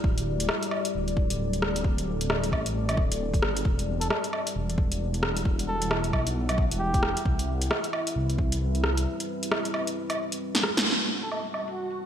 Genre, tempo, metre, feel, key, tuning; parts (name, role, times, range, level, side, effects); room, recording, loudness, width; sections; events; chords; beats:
future garage; 133 BPM; 4/4; swing 60% on 16ths; E minor; A4 = 440 Hz
deep dark ambient pad; sustained chords; 0.0-12.1 s; G3 to F#5; -33 LUFS; left 2 dB; chorus, built-in reverb, sidechain pumping
swelling detuned saw bass; bass; 0.0-9.1 s; D1 to C2; -29 LUFS; equal; sidechain pumping
electronic kick drum; drums; 0.0-8.5 s; -26 LUFS; equal; overdrive
deep house drum kit; drums; 0.2-12.0 s; hi-hat, rim click, snare drum, woodblock; -28 LUFS; equal; overdrive, low-pass filter on snare, low-pass filter on hats, low-pass filter on perc, low-pass filter on room
trumpet with cup mute; melody; 4.0-7.2, 11.2-11.4 s; G4 to A4; -34 LUFS; right 1 dB; digital delay
backwards swelling texture; texture; 11.1-12.1 s; F#4; -36 LUFS; right 1 dB; built-in reverb, ensemble chorus
moderate lush hall reverb, RT60 1.9 s; bright 1980s-style digital production; -24 LUFS; side -9 dB against mid
0.0-10.9 A section; 10.9-12.1 B section
drum fill 10.5-10.9; band accent 10.8
0.0 D7sus4; 3.7 Em9; 7.3 Cmaj7; 10.9 Em9
| 0.04 0.49 0.94 1.40 | 1.85 2.30 2.75 3.20 | 3.65 4.10 4.55 5.00 | 5.46 5.91 6.36 6.81 | 7.26 7.71 8.16 8.61 | 9.06 9.52 9.97 10.42 | 10.87 11.32 11.77